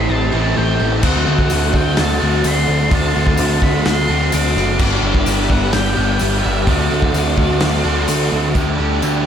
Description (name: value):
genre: rock, shoegaze and dream pop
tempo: 128 BPM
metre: 4/4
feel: straight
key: D mixolydian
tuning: A4 = 440 Hz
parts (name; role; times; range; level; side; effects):
- octave-fuzz lead guitar; melody; 0.0-8.0 s; D5 to D6; -24 LUFS; left 1 dB; distortion, diffuse ambient delay
- phased string machine; sustained chords; 0.0-9.3 s; F#4 to C6; -26 LUFS; equal; ensemble chorus, phaser
- picked twelve-string acoustic guitar; arpeggios; 0.0-9.3 s; E3 to G4; -29 LUFS; right 7 dB; none
- biting overdriven guitar; riff; 0.0-9.3 s; G2 to G4; -21 LUFS; right 8 dB; reverse reverb
- overdriven semi-hollow guitar; riff; 0.0-9.3 s; G2 to G4; -21 LUFS; left 7 dB; wide subtle chorus
- growling picked electric bass; bass; 0.0-9.2 s; F#1 to D2; -18 LUFS; equal; overdrive
- loose indie drum kit; drums; 1.0-9.1 s; crash cymbal, hi-hat, kick drum, snare drum; -20 LUFS; equal; none
- tambourine; percussion; 1.5-9.1 s; none; -31 LUFS; left 7 dB; none
room: moderate church reverb, RT60 3.1 s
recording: dreamy mix soaked in reverb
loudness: -13 LUFS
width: side -8 dB against mid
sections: 0.0-8.6 A section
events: none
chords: 0.0 Am7; 1.0 D7; 4.8 G6; 6.7 D7; 8.6 Dsus4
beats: 0.09 0.56 | 1.03 1.50 1.97 2.44 | 2.92 3.38 3.85 4.33 | 4.79 5.26 5.74 6.21 | 6.67 7.14 7.61 8.08 | 8.55 9.02